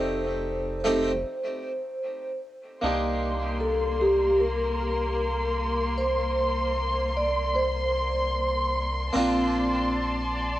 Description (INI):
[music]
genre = trip hop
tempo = 76 BPM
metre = 4/4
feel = swing 58% on 16ths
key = C dorian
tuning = A4 = 440 Hz
[part]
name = vibraphone with soft mallets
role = melody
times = 0.0-8.7 s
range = G4 to D5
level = -27 LUFS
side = equal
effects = cassette tape, tape echo
[part]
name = harpsichord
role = accompaniment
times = 0.0-10.6 s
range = A3 to G4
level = -27 LUFS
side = right 1 dB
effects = harmonic tremolo, low-pass filter, cassette tape, tape echo
[part]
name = soft dub sub bass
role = bass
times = 0.0-10.6 s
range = F1 to C2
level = -31 LUFS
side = equal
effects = tube saturation
[part]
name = rich studio violin section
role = sustained chords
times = 2.8-10.6 s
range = Bb3 to C6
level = -29 LUFS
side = equal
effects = vintage 12-bit sampler grit, cassette tape
[sound]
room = moderate spring reverb, RT60 1.8 s, studio ambience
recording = home recording on cassette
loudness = -24 LUFS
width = side -14 dB against mid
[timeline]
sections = 0.0-2.8 A section; 2.8-10.6 B section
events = break 1.2-2.8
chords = 0.0 F9; 2.8 Cm7; 9.1 Bbmaj9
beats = 0.45 1.24 2.03 | 2.82 3.61 4.40 5.19 | 5.98 6.77 7.56 8.35 | 9.13 9.92